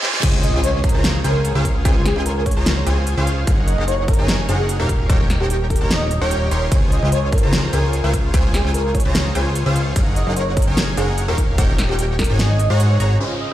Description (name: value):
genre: future bass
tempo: 148 BPM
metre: 4/4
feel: half-time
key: Db major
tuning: A4 = 439 Hz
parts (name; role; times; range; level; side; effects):
- supersaw stab; riff; 0.0-13.5 s; Db4 to C6; -24 LUFS; equal; sidechain pumping, low-pass filter
- big-room dance drum kit; drums; 0.0-13.1 s; crash cymbal, hi-hat, ride cymbal, snare drum; -24 LUFS; equal; none
- reverse cymbal, impact and downlifter; sound effects; 0.0-1.9, 13.2-13.5 s; none; -26 LUFS; right 1 dB; none
- fat analog bass; bass; 0.2-13.2 s; Eb1 to Ab2; -19 LUFS; equal; sidechain pumping
- electronic kick drum; drums; 0.2-12.3 s; none; -18 LUFS; equal; none
- airy dreamy lead; melody; 0.4-13.5 s; G4 to Eb5; -26 LUFS; equal; chorus, sidechain pumping, ping-pong delay
- felt-muted upright piano; accompaniment; 13.2-13.5 s; Db3 to Eb5; -33 LUFS; right 1 dB; none
room: digital ambience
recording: played on a big sound system in a bare room, stone room reverb, high-pass filter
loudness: -15 LUFS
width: side -13 dB against mid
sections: 0.2-13.2 A section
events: break 0.0; drum fill 0.0; reverse cymbal 0.0; drop 0.2-13.2; impact 0.2-1.9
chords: 0.2 Dbmaj7; 3.5 Gb69; 4.9 Eb7; 6.7 Dbmaj7; 10.0 Eb7; 12.4 Ab7sus4